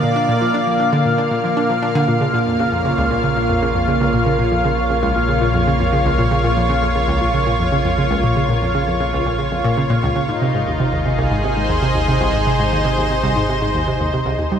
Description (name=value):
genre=ambient, sequencer-driven space music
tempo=117 BPM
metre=4/4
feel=straight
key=Bb minor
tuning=A4 = 440 Hz
part: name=mellow horn-like synth lead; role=melody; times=0.0-1.8 s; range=F5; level=-25 LUFS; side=left 2 dB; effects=chorus, shimmer reverb, ping-pong delay
part: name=lush unison pad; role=sustained chords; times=0.0-14.6 s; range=Bb2 to F5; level=-18 LUFS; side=equal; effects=chorus, shimmer reverb
part: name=analog pluck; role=riff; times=0.0-14.6 s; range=C2 to D4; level=-19 LUFS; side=right 1 dB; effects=chorus, shimmer reverb, ping-pong delay
part: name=warm sub bass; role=bass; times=2.1-14.6 s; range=Eb1 to Bb1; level=-24 LUFS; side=equal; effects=none
room=wet huge ambient reverb, RT60 7.9 s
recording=none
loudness=-15 LUFS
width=side -8 dB against mid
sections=0.0-2.1 A section; 2.1-14.6 B section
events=none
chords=0.0 Bb; 2.1 Bbm; 10.3 Ab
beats=| 0.03 0.54 1.06 1.57 | 2.08 2.60 3.11 3.62 | 4.13 4.65 5.16 5.67 | 6.18 6.70 7.21 7.72 | 8.24 8.75 9.26 9.77 | 10.29 10.80 11.31 11.82 | 12.34 12.85 13.36 13.88 | 14.39